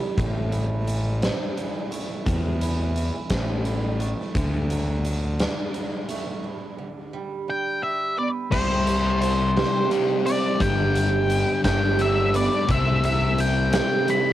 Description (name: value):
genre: quiet-loud alternative rock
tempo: 58 BPM (dotted quarters)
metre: 6/8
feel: straight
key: unclear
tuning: A4 = 440 Hz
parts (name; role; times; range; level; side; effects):
- picked steel-string acoustic guitar; arpeggios; 0.0-14.3 s; G2 to G4; -29 LUFS; right 7 dB; cassette tape
- fuzz picked electric bass; bass; 0.2-13.8 s; G1 to E2; -24 LUFS; equal; overdrive
- huge arena drum kit; drums; 0.2-14.2 s; crash cymbal, hi-hat, kick drum, snare drum; -27 LUFS; equal; cassette tape
- octave-fuzz lead guitar; melody; 7.5-14.3 s; C5 to B5; -25 LUFS; left 1 dB; distortion, cassette tape
- sludgy distorted guitar; riff; 8.5-14.3 s; G2 to C4; -26 LUFS; left 7 dB; overdrive, cassette tape
room: little or no reverb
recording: home recording on cassette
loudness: -21 LUFS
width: side -13 dB against mid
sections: 0.0-8.5 A section; 8.5-14.3 B section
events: break 6.4-8.5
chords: 0.2 Am; 4.4 D; 6.4 G; 8.5 C; 10.6 G; 12.7 C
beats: | 0.18 1.22 | 2.27 3.31 | 4.35 5.39 | 6.44 7.48 | 8.52 9.56 | 10.61 11.65 | 12.69 13.73